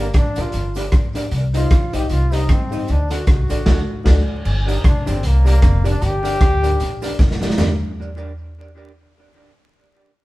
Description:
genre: ska.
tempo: 153 BPM.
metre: 4/4.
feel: swing 58% on 8ths.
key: G minor.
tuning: A4 = 440 Hz.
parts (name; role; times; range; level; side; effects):
clear trombone; melody; 0.0-7.2 s; Bb3 to G4; -25 LUFS; left 1 dB; none.
hollow-body jazz guitar; accompaniment; 0.0-7.7 s; D4 to Eb5; -30 LUFS; right 2 dB; tape echo.
dark upright piano; stabs; 0.0-7.8 s; D4 to Eb5; -30 LUFS; left 4 dB; none.
upright bass; bass; 0.0-7.8 s; F1 to G2; -19 LUFS; equal; none.
raw garage drum kit; drums; 0.1-7.7 s; crash cymbal, hi-hat, kick drum, rim click, snare drum, toms; -18 LUFS; equal; none.
cabasa; percussion; 0.1-7.8 s; none; -46 LUFS; right 4 dB; none.
room: moderate stone room reverb, RT60 1.1 s.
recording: band playing live in one room, vinyl crackle.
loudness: -15 LUFS.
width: side -18 dB against mid.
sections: 0.0-4.5 A section; 4.5-7.6 B section; 7.6-9.2 C section.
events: band accent 3.7-4.5; drum fill 7.2-7.6.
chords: 0.0 Gm; 1.3 Cm; 2.9 D; 4.5 Gm.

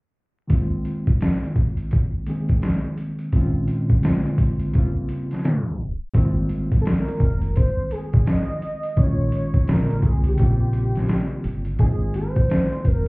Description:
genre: lo-fi hip hop.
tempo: 85 BPM.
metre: 4/4.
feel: swing 62% on 16ths.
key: Ab major.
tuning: A4 = 437 Hz.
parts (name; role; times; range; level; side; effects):
barky reed electric piano; accompaniment; 0.5-13.1 s; Bb2 to Bb4; -24 LUFS; equal; overdrive, fast tremolo, cassette tape.
boom bap sampler-style drum kit; drums; 0.5-13.1 s; hi-hat, kick drum, snare drum; -20 LUFS; equal; none.
deep dub fingered electric bass; bass; 6.2-13.1 s; F1 to C2; -22 LUFS; equal; none.
warm velvety synth lead; melody; 6.8-13.1 s; G4 to Eb5; -30 LUFS; equal; chorus.
room: moderate studio reverb, RT60 0.6 s.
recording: heard muffled through a wall, club reverb, vinyl crackle, EQ, tape stop.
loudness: -19 LUFS.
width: side -26 dB against mid.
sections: 0.5-6.2 A section; 6.2-13.1 B section.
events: tape stop 5.4-6.2.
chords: 0.5 Ab6; 3.3 Bbm11; 4.0 Bb7; 4.7 Bbm69/Db; 6.2 Ab6; 9.0 Bbm7; 9.7 Bb7; 10.4 Bbm69; 11.8 Ab6.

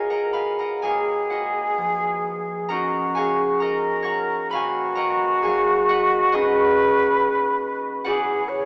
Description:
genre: classical, impressionist duo for flute and harp.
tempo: 60-71 BPM.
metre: 4/4.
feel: rubato.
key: unclear.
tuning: A4 = 438 Hz.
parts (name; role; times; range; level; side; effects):
silver concert flute; melody; 0.0-8.7 s; F#4 to C#5; -24 LUFS; equal; none.
concert harp; accompaniment; 0.0-8.7 s; C#2 to C#6; -25 LUFS; equal; none.
room: wet cathedral reverb, RT60 5.5 s.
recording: in a vast, echoing space, small speaker sound.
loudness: -22 LUFS.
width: mono.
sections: 0.0-8.7 A section.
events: none.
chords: 0.0 C#13; 0.8 D#m9; 8.1 E9.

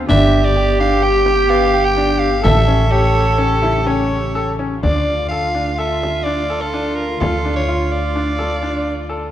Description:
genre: contemporary instrumental, chamber music in an uneven meter.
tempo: 127 BPM.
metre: 5/4.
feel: straight.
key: D minor from 4.8 s.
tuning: A4 = 440 Hz.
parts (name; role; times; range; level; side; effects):
rich cello; second line; 0.0-9.3 s; F4 to A4; -20 LUFS; right 3 dB; none.
dark studio string section; sustained chords; 0.0-9.3 s; C#3 to G4; -26 LUFS; left 2 dB; none.
upright bass; bass; 0.0-9.3 s; G1 to D2; -20 LUFS; equal; none.
raspy soprano saxophone; melody; 0.1-9.3 s; A4 to G5; -21 LUFS; left 1 dB; none.
bright concert grand piano; arpeggios; 0.1-9.2 s; B3 to A4; -22 LUFS; left 2 dB; none.
frame drum; percussion; 0.1-8.6 s; none; -25 LUFS; left 2 dB; none.
room: moderate recital hall reverb, RT60 1.8 s.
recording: dark, warm production.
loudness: -14 LUFS.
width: side -11 dB against mid.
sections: 0.0-4.8 A section; 4.8-9.3 B section.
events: none.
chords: 0.1 G; 2.4 A7; 4.8 Dm.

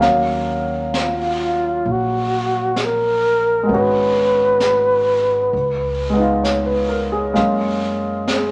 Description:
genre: jazz ballad.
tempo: 65 BPM.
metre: 4/4.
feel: swing 69% on 8ths.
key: Eb minor.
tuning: A4 = 441 Hz.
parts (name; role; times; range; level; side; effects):
warm concert grand piano; accompaniment; 0.0-8.5 s; Gb3 to F5; -22 LUFS; equal; none.
upright bass; bass; 0.0-8.5 s; Ab1 to Gb2; -30 LUFS; equal; none.
jazz brush drum kit; drums; 0.0-8.5 s; brushed snare drum, hi-hat, snare drum; -30 LUFS; equal; none.
breathy flugelhorn; melody; 1.0-8.5 s; F4 to Cb5; -19 LUFS; equal; none.
room: moderate studio reverb, RT60 0.8 s.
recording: none.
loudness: -18 LUFS.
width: mono.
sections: 0.0-8.5 A section.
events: none.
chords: 0.0 Ebm9; 3.7 Abm7; 5.5 Db9; 7.4 Gbmaj7.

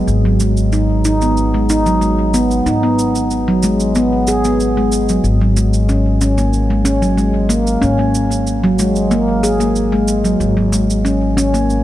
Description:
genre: organic downtempo.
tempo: 93 BPM.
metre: 4/4.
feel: straight.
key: unclear.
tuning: A4 = 440 Hz.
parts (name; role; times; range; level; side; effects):
handpan; arpeggios; 0.0-11.7 s; F#3 to G#4; -14 LUFS; equal; low-pass filter, ping-pong delay.
upright bass; bass; 0.0-11.8 s; G#1; -18 LUFS; equal; tube saturation.
bronze singing bowl; texture; 0.0-11.8 s; none; barely audible; none; none.
shaker; drums; 0.1-11.8 s; none; -26 LUFS; right 4 dB; small room ambience.
room: light reverb, small room ambience.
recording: dark, warm production.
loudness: -12 LUFS.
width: side -13 dB against mid.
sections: 0.0-11.8 A section.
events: none.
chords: 0.0 G#m7; 5.2 F#add9/G#.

